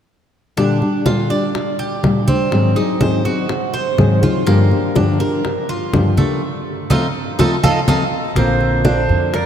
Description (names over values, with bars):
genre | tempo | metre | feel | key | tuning
latin, Cuban son and guajira | 123 BPM | 4/4 | straight | Bb major | A4 = 442 Hz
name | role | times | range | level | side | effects
nylon-string guitar | accompaniment | 0.6-9.4 s | G2 to Ab4 | -17 LUFS | left 2 dB | none
Cuban tres | arpeggios | 0.6-9.5 s | A3 to D5 | -21 LUFS | right 4 dB | none
bongos | percussion | 0.6-9.5 s | none | -26 LUFS | left 4 dB | none
congas | percussion | 0.6-9.5 s | none | -21 LUFS | right 1 dB | none
clear clarinet | melody | 8.4-9.5 s | C5 to D5 | -19 LUFS | right 3 dB | none
upright bass | bass | 8.4-9.5 s | Bb1 to F2 | -18 LUFS | right 1 dB | none
room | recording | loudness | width
wet cathedral reverb, RT60 6.1 s | in a vast, echoing space | -14 LUFS | side -9 dB against mid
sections
0.6-8.4 A section; 8.4-9.5 B section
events
band accent 6.4-8.4; drum fill 7.6-8.4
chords
0.6 Bb6; 2.5 Ab7; 4.5 Gm7; 6.4 F7; 8.4 Bbadd9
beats
| 0.57 1.06 1.55 2.04 | 2.52 3.01 3.50 3.98 | 4.47 4.96 5.45 5.93 | 6.42 6.91 7.39 7.88 | 8.37 8.85 9.34